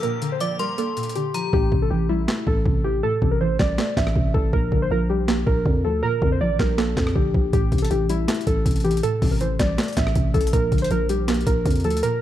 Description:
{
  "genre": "hip hop, trap",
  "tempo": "160 BPM",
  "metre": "4/4",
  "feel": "half-time",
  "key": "A phrygian",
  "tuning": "A4 = 440 Hz",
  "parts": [
    { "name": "warbly lo-fi synth keys", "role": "melody", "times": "0.0-12.2 s", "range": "E4 to E5", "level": "-25 LUFS", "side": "equal", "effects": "chorus, ping-pong delay" },
    { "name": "metallic FM bell", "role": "second line", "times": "0.0-1.5 s", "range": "Bb5 to D6", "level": "-31 LUFS", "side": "left 4 dB", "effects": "chorus, ping-pong delay" },
    { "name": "string-like resonator pluck", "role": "accompaniment", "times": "0.0-12.2 s", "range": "A2 to Bb3", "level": "-26 LUFS", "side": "right 1 dB", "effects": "chorus" },
    { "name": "clear symphonic string section", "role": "sustained chords", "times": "0.0-1.5 s", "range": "D3 to G4", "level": "-40 LUFS", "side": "left 2 dB", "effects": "none" },
    { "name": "boom bap sampler-style drum kit", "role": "drums", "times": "0.0-12.1 s", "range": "handclaps, hi-hat, kick drum, rim click, snare drum", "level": "-23 LUFS", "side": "equal", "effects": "overdrive" },
    { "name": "growling 808-style bass", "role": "bass", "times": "1.5-12.0 s", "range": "A1 to F2", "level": "-24 LUFS", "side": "equal", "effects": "none" }
  ],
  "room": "little or no reverb",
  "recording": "none",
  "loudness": "-19 LUFS",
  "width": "side -12 dB against mid",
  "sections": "0.0-1.5 A section; 1.5-12.2 B section",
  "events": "hi-hats muted 1.5-7.5",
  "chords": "0.0 Bb6; 1.5 Am7; 4.5 Bb6; 7.5 Am7; 10.5 Bb6"
}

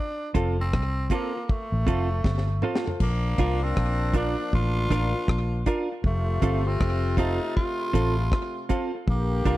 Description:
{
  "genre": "roots reggae",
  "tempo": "79 BPM",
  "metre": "4/4",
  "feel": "swing 62% on 16ths",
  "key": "Bb major",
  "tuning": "A4 = 445 Hz",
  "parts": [
    { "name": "raspy tenor saxophone", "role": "melody", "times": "0.0-9.6 s", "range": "A3 to F4", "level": "-32 LUFS", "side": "right 1 dB", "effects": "tape echo" },
    { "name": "clean electric guitar", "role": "accompaniment", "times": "0.3-9.6 s", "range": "C4 to Bb4", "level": "-31 LUFS", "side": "right 6 dB", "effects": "spring reverb, tape echo" },
    { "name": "clear baby grand piano", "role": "stabs", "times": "0.3-9.6 s", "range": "F4 to F5", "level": "-33 LUFS", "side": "left 3 dB", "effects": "none" },
    { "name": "vintage muted fingered electric bass", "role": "bass", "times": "0.3-9.6 s", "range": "F1 to C2", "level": "-25 LUFS", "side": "equal", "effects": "none" },
    { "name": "deep reggae drum kit", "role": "drums", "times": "0.3-9.6 s", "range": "crash cymbal, hi-hat, kick drum, rim click, snare drum, toms", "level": "-26 LUFS", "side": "equal", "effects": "none" },
    { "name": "clear horn section", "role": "second line", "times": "3.0-9.6 s", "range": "C3 to G4", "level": "-33 LUFS", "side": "left 4 dB", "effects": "tape echo" }
  ],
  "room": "little or no reverb",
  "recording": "dry, close 1970s-style studio recording",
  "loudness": "-23 LUFS",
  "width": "side -16 dB against mid",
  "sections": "0.0-3.0 A section; 3.0-9.6 B section",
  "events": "drum fill 2.2-3.0",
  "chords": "0.0 F; 3.0 Bb; 6.0 F"
}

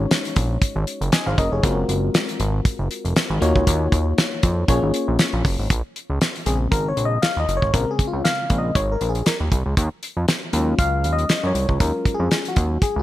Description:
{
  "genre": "early-eighties boogie funk",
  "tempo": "118 BPM",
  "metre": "4/4",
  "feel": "swing 56% on 16ths",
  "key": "Bb minor",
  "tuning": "A4 = 440 Hz",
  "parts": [
    { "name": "FM electric piano", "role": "accompaniment", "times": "0.0-13.0 s", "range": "Db3 to Ab5", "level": "-24 LUFS", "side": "left 2 dB", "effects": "chorus" },
    { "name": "fat analog bass", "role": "bass", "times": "0.0-13.0 s", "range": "F1 to Gb2", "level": "-21 LUFS", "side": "equal", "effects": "none" },
    { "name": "damped 70s drum kit", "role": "drums", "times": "0.1-13.0 s", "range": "hi-hat, kick drum, snare drum", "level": "-20 LUFS", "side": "equal", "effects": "gated reverb" }
  ],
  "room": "small room ambience",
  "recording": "none",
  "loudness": "-18 LUFS",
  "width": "side -14 dB against mid",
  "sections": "0.0-5.7 A section; 5.7-13.0 B section",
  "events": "FM electric piano solo 5.7-13.0",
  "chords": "0.0 Ab7sus4; 1.6 Gbmaj9#11; 3.4 Ebm9; 4.7 Bbm7; 5.7 Bbm9; 9.8 Ebm11"
}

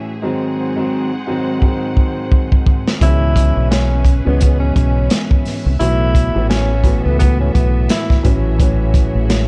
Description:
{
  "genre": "hip hop, boom-bap hip-hop",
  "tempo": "86 BPM",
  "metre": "4/4",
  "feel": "swing 58% on 16ths",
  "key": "C# minor",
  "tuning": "A4 = 440 Hz",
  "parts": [
    { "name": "dark concert grand piano", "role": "accompaniment", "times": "0.0-9.5 s", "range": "G#2 to C#4", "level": "-23 LUFS", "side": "equal", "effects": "cassette tape, high-pass filter, low-pass filter" },
    { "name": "clear studio string section", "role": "sustained chords", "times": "0.0-9.5 s", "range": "G#3 to F#5", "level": "-32 LUFS", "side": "equal", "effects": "high-pass filter, low-pass filter" },
    { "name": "crunchy breakbeat drum kit", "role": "drums", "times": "1.6-9.5 s", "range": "hi-hat, kick drum, snare drum", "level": "-18 LUFS", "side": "equal", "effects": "none" },
    { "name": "breathy tenor saxophone", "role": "melody", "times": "3.0-8.2 s", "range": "B3 to E4", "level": "-25 LUFS", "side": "equal", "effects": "high-pass filter, low-pass filter, tape echo" },
    { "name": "deep dub fingered electric bass", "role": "bass", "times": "3.0-9.5 s", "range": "A1 to C#2", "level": "-18 LUFS", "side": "equal", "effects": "none" }
  ],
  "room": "little or no reverb",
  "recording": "dark, warm production",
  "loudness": "-15 LUFS",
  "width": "mono",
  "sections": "0.0-9.5 A section",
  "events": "drum fill 1.6-3.0",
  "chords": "0.2 G#7; 3.0 C#m7; 5.8 B7sus4; 8.2 F#m7/A"
}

